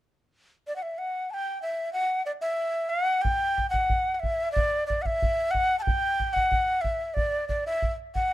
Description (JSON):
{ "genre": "andean folk, Andean ensemble", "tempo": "92 BPM", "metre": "2/4", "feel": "straight", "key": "unclear", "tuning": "A4 = 441 Hz", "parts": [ { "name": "breathy large quena", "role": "melody", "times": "0.7-8.3 s", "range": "D5 to A5", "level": "-25 LUFS", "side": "equal", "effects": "plate reverb" }, { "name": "bombo", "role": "percussion", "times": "3.2-8.3 s", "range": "none", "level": "-29 LUFS", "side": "right 1 dB", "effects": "none" } ], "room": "light reverb", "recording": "dark, warm production", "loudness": "-24 LUFS", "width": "side -14 dB against mid", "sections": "0.6-3.3 A section; 3.3-8.3 B section", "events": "none", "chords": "none", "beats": "| 0.63 1.29 | 1.94 2.60 | 3.25 3.91 | 4.56 5.21 | 5.87 6.52 | 7.17 7.82" }